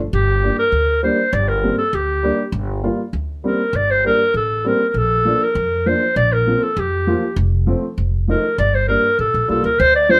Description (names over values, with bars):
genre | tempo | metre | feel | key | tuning
klezmer | 99 BPM | 2/4 | straight | G minor | A4 = 439 Hz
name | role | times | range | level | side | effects
upright bass | bass | 0.0-10.2 s | F1 to F2 | -23 LUFS | equal | none
warm clarinet | melody | 0.1-10.2 s | G4 to D5 | -19 LUFS | equal | none
warm upright piano | accompaniment | 0.4-10.2 s | F3 to F4 | -23 LUFS | equal | none
room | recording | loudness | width
moderate studio reverb, RT60 0.6 s | lossy compression artefacts | -18 LUFS | mono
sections
0.1-9.8 A section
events
none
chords
0.1 Gm; 4.9 Bb5; 7.4 F; 8.6 Gm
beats
| 0.12 0.72 | 1.33 1.93 | 2.53 3.13 | 3.74 4.34 | 4.95 5.55 | 6.16 6.76 | 7.37 7.97 | 8.58 9.19 | 9.79